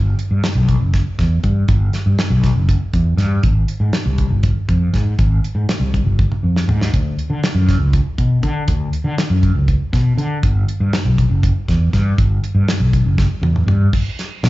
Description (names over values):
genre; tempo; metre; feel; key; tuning
electric jazz fusion; 240 BPM (eighths); 7/8; straight; G lydian; A4 = 442 Hz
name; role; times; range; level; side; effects
fretless electric bass; bass; 0.0-14.5 s; F#1 to D3; -15 LUFS; equal; none
damped 70s drum kit; drums; 0.2-14.5 s; crash cymbal, hi-hat, kick drum, snare drum, toms; -20 LUFS; equal; none
room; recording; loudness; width
little or no reverb; live gig heard through the venue's PA, club reverb, nothing above 7.7 kHz; -14 LUFS; side -18 dB against mid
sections
0.0-13.9 A section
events
drum fill 6.2-6.9, 13.2-13.9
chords
none